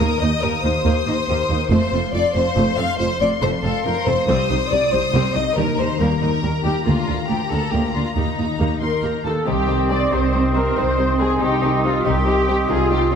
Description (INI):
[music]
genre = cinematic, heroic adventure film score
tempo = 93 BPM (dotted quarters)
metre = 12/8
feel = straight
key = Eb lydian, C minor from 9.5 s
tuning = A4 = 440 Hz
[part]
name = rich symphonic violin section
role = melody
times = 0.0-13.1 s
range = Eb4 to Eb6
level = -28 LUFS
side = left 4 dB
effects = none
[part]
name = rich symphonic violin section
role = second line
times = 0.0-13.2 s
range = C4 to F5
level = -23 LUFS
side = left 3 dB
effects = none
[part]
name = warm symphonic viola section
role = accompaniment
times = 0.0-13.2 s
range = C3 to G4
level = -26 LUFS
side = right 1 dB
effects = none
[part]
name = concert harp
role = arpeggios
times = 0.0-13.2 s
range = C3 to F5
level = -28 LUFS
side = left 8 dB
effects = none
[part]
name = rich symphonic cello section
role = bass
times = 0.0-13.2 s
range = C2 to G4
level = -24 LUFS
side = right 3 dB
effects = none
[part]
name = rich symphonic double bass section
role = bass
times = 0.0-13.2 s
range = F1 to Eb2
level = -24 LUFS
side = right 3 dB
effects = none
[part]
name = timpani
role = percussion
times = 5.6-6.2 s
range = Eb3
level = -28 LUFS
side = right 2 dB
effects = none
[part]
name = dark trumpet section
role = stabs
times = 8.8-13.2 s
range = Eb4 to D5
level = -23 LUFS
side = right 1 dB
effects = none
[part]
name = mellow hollow silver concert flute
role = second line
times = 9.5-13.2 s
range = C6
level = -28 LUFS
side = left 3 dB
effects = none
[part]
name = warm clarinet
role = second line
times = 9.5-13.2 s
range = C4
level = -30 LUFS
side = left 4 dB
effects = none
[part]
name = warm oboe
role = second line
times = 9.5-13.2 s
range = Eb5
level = -28 LUFS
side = equal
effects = none
[part]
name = mellow French horn section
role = sustained chords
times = 9.5-13.2 s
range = Eb3 to G4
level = -26 LUFS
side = left 8 dB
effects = none
[sound]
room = moderate concert hall reverb, RT60 1.8 s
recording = none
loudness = -17 LUFS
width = side -7 dB against mid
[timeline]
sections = 0.0-9.5 A section; 9.5-13.2 B section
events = none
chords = 0.0 Eb; 1.7 F; 4.3 Cm; 5.6 Eb; 6.9 Bb/D; 8.2 Eb; 9.5 Cm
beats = 0.43 1.07 | 1.71 2.35 3.00 3.64 | 4.29 4.93 5.58 6.22 | 6.87 7.51 8.17 8.82 | 9.47 10.12 10.76 11.41 | 12.05 12.70